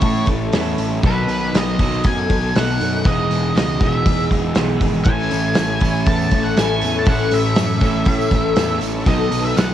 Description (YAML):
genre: rock, shoegaze and dream pop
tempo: 119 BPM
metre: 4/4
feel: straight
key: A lydian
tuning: A4 = 440 Hz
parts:
  - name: octave-fuzz lead guitar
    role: melody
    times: 0.0-9.7 s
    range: B4 to A5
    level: -24 LUFS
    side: equal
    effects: distortion, cassette tape, analog delay
  - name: picked twelve-string acoustic guitar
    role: arpeggios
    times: 0.0-9.7 s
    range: F#4 to A4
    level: -26 LUFS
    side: left 10 dB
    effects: ensemble chorus, cassette tape, analog delay
  - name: electric guitar through a small old amp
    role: riff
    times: 0.0-9.7 s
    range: A2 to A4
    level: -24 LUFS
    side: right 10 dB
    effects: reverse reverb, cassette tape
  - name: thick fuzz guitar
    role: riff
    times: 0.0-9.7 s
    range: E2 to B3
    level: -24 LUFS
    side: left 7 dB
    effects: distortion, wide subtle chorus, cassette tape
  - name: fuzz picked electric bass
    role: bass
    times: 0.0-9.7 s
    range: E1 to A2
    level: -23 LUFS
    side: equal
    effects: overdrive
  - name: loose indie drum kit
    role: drums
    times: 0.0-9.7 s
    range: hi-hat, kick drum, snare drum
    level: -20 LUFS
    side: equal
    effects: cassette tape
  - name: string machine, violins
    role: sustained chords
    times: 5.1-9.7 s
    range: A4 to D#6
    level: -31 LUFS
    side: right 1 dB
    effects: ensemble chorus, cassette tape
  - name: tambourine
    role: percussion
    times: 5.1-9.7 s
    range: none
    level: -40 LUFS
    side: right 12 dB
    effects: none
room: light reverb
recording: home recording on cassette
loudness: -15 LUFS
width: side -11 dB against mid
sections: 0.0-9.7 A section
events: none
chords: 0.0 A; 1.0 B7; 3.1 Emaj7; 5.1 Amaj7; 9.1 B7